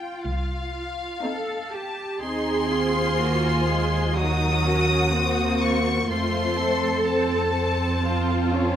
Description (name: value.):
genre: classical, slow romantic movement for string orchestra.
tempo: 62 BPM.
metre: 4/4.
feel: rubato.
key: unclear.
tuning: A4 = 440 Hz.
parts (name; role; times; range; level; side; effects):
warm symphonic violin section; melody; 0.0-8.8 s; F5 to Eb6; -28 LUFS; left 3 dB; none.
rich symphonic violin section; second line; 0.0-8.8 s; F4 to C5; -29 LUFS; left 3 dB; none.
rich studio viola section; accompaniment; 0.0-8.8 s; Gb3 to F4; -26 LUFS; right 1 dB; none.
rich symphonic cello section; bass; 0.0-8.8 s; F4 to A4; -29 LUFS; right 2 dB; none.
warm symphonic double bass section; bass; 0.3-8.8 s; C2 to F2; -26 LUFS; right 1 dB; none.
room: moderate scoring stage reverb, RT60 1.9 s.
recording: none.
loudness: -21 LUFS.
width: side -10 dB against mid.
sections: 0.0-8.8 A section.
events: none.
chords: 0.0 F7; 2.2 Cdim/Eb; 6.1 F.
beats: 0.26 1.24 | 2.21 3.18 4.16 5.13 | 6.09 7.07 8.04.